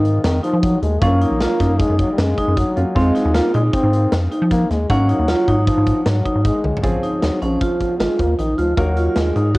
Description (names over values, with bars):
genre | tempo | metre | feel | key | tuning
progressive instrumental, band music in an uneven meter | 155 BPM | 5/4 | straight | Eb dorian | A4 = 440 Hz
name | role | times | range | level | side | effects
mellow trombone | second line | 0.0-9.6 s | Eb3 to C4 | -23 LUFS | left 2 dB | cassette tape, analog delay
warm grand piano | accompaniment | 0.0-9.6 s | Gb3 to Gb5 | -28 LUFS | equal | cassette tape
vibraphone with medium mallets | arpeggios | 0.0-9.6 s | C4 to F4 | -20 LUFS | right 1 dB | cassette tape
rubbery square bass | bass | 0.0-9.6 s | Ab1 to F3 | -18 LUFS | equal | none
big rock drum kit | drums | 0.0-9.6 s | hi-hat, kick drum, snare drum, toms | -23 LUFS | equal | cassette tape
room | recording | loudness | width
small room ambience | home recording on cassette | -15 LUFS | side -20 dB against mid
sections
0.0-6.8 A section; 6.8-9.6 B section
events
drum fill 6.6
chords
0.0 Fm7; 1.0 Ebm7; 3.0 Fm7; 4.9 Ab7sus4; 6.8 Bbm7; 8.8 Ebm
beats
0.24 0.63 | 1.02 1.41 1.80 2.18 2.57 | 2.96 3.35 3.74 4.12 4.51 | 4.90 5.29 5.67 6.06 6.45 | 6.83 7.22 7.61 8.00 8.38 | 8.77 9.16 9.55